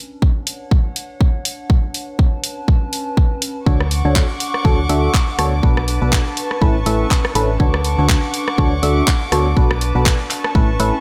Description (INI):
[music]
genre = piano house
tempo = 122 BPM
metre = 4/4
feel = swing 57% on 16ths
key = D major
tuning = A4 = 436 Hz
[part]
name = warbly tape-like pad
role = texture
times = 0.0-11.0 s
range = C#4 to A5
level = -31 LUFS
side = equal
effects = chorus, built-in reverb, sidechain pumping
[part]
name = electronic kick drum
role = drums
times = 0.2-10.7 s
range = none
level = -17 LUFS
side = equal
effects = none
[part]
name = house drum kit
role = drums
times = 0.5-10.9 s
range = handclaps, hi-hat, rim click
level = -24 LUFS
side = equal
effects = none
[part]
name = rich chamber string section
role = sustained chords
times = 3.7-11.0 s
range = B4 to D6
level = -28 LUFS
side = equal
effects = sidechain pumping
[part]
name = barking FM electric piano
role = riff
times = 3.7-10.9 s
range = A2 to E5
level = -23 LUFS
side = equal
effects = phaser, sidechain pumping, delay
[part]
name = solid FM bass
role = bass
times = 3.7-10.9 s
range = A1 to D2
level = -21 LUFS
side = equal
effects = sidechain pumping
[sound]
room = light reverb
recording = none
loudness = -17 LUFS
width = mono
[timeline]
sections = 0.0-11.0 A section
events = fade-in on ambient pad 0.0-11.0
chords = 0.0 Dmaj7; 2.4 Aadd9; 3.7 Dmaj7; 5.6 Bm7; 6.4 Aadd9; 7.6 Dmaj7; 9.6 Bm7; 10.3 Aadd9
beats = 0.22 0.71 1.21 | 1.70 2.19 2.68 3.17 | 3.67 4.16 4.65 5.14 | 5.63 6.12 6.62 7.11 | 7.60 8.09 8.58 9.07 | 9.57 10.06 10.55